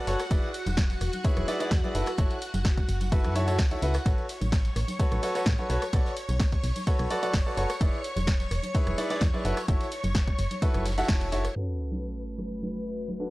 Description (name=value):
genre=piano house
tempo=128 BPM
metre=4/4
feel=straight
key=A major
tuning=A4 = 439 Hz
part: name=string machine, violins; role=sustained chords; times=0.0-13.3 s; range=F#4 to C#6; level=-37 LUFS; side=equal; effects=ensemble chorus, sidechain pumping
part: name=clear grand piano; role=riff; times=0.0-13.3 s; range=C#4 to F#5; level=-31 LUFS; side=equal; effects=sidechain pumping
part: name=solid FM bass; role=bass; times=0.1-11.5 s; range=E1 to A2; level=-30 LUFS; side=equal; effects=sidechain pumping
part: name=house drum kit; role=drums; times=0.1-13.2 s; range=hi-hat, rim click, snare drum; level=-35 LUFS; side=equal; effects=none
part: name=jazz brush drum kit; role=drums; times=0.1-11.6 s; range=hi-hat, ride cymbal, snare drum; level=-46 LUFS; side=right 1 dB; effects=none
part: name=tambourine and congas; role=percussion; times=0.2-13.2 s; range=none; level=-39 LUFS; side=right 1 dB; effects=none
part: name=electronic kick drum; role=drums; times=0.3-11.2 s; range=none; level=-26 LUFS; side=equal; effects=overdrive
part: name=sub drop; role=sound effects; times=11.6-13.3 s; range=none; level=-35 LUFS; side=equal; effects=none
part: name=warbly tape-like pad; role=texture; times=12.0-13.3 s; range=A3 to E5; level=-36 LUFS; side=left 1 dB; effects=chorus, built-in reverb, sidechain pumping
room=small room ambience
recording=dry, gritty hardware recording, cassette tape, low-pass filter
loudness=-25 LUFS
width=side -19 dB against mid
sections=0.0-11.6 A section; 11.6-13.3 B section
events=band accent 11.1; impact 11.6-13.3; filter sweep on string machine 11.6-13.3; filter sweep 11.6-13.3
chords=0.3 E7; 1.9 F#m7; 4.1 A69; 5.7 Bm7; 7.8 E7; 9.4 F#m7; 11.6 A69